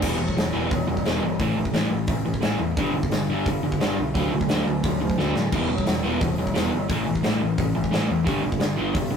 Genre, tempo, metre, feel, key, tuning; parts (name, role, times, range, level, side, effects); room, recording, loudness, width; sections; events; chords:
punk rock; 175 BPM; 4/4; straight; E minor; A4 = 439 Hz
crunchy overdriven guitar; riff; 0.0-9.2 s; G2 to B3; -24 LUFS; left 1 dB
fuzz picked electric bass; bass; 0.0-9.2 s; E1 to A2; -29 LUFS; equal; overdrive
big rock drum kit; drums; 0.0-9.0 s; crash cymbal, hi-hat, kick drum, snare drum; -26 LUFS; equal
light reverb; rough rehearsal-room recording, warm saturation; -21 LUFS; side -7 dB against mid
0.0-9.2 A section
drum fill 5.2-5.5
0.0 Em; 1.4 A5; 2.8 G5; 4.2 D; 5.5 Em; 6.9 A5; 8.3 G5